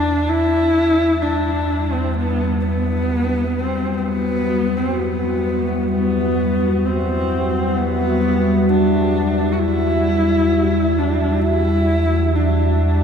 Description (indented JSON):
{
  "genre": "dark ambient drone",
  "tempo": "65 BPM",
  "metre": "4/4",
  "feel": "straight",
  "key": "E minor",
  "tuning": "A4 = 440 Hz",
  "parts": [
    { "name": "dark horsehead fiddle", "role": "melody", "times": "0.0-13.0 s", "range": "B3 to F#4", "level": "-19 LUFS", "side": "equal", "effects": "diffuse ambient delay" },
    { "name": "deep rumbling drone", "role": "drone", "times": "0.0-13.0 s", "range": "E2 to B2", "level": "-22 LUFS", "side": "equal", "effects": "built-in reverb, phaser, wide subtle chorus" },
    { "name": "deep dark ambient pad", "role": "sustained chords", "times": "1.2-13.0 s", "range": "G3 to E5", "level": "-20 LUFS", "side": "left 1 dB", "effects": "chorus, built-in reverb" }
  ],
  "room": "wet huge ambient reverb, RT60 8.2 s",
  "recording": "none",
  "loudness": "-16 LUFS",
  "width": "side -7 dB against mid",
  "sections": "0.3-13.0 A section",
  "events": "none",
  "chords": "0.3 Emadd9"
}